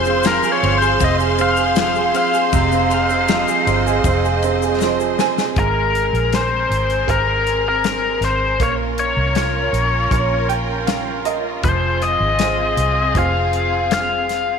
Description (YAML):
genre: pop ballad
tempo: 79 BPM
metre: 4/4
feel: straight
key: F minor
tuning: A4 = 440 Hz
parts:
  - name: biting lead guitar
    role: melody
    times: 0.0-14.6 s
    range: Bb4 to F5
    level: -19 LUFS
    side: left 4 dB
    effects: overdrive, slapback echo
  - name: bright upright piano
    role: accompaniment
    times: 0.0-14.6 s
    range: C3 to Ab5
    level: -22 LUFS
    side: right 11 dB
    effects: none
  - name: clear studio string section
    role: sustained chords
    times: 0.0-14.6 s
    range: C4 to C6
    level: -24 LUFS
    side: equal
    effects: none
  - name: vintage muted fingered electric bass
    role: bass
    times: 0.0-14.6 s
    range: F1 to C2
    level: -22 LUFS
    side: equal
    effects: none
  - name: egg shaker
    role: percussion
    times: 0.0-5.6 s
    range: none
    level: -36 LUFS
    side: left 17 dB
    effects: none
  - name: natural country drum kit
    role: drums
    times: 0.1-14.5 s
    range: hi-hat, kick drum, ride cymbal, snare drum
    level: -24 LUFS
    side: left 4 dB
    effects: none
room: moderate echo chamber reverb, RT60 1.6 s, studio reverb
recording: 1960s-style stereo with parts hard left and right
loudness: -15 LUFS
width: side -6 dB against mid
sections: 0.0-5.6 A section; 5.6-14.6 B section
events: upright piano fill 4.4-5.6, 10.1-11.6; drum fill 4.8-5.6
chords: 0.0 Fm; 5.6 Abadd9; 8.6 Bbm; 11.6 Fm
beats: 0.25 1.01 1.77 | 2.53 3.29 4.05 4.81 | 5.57 6.33 7.08 7.84 | 8.60 9.36 10.12 10.88 | 11.64 12.40 13.16 13.92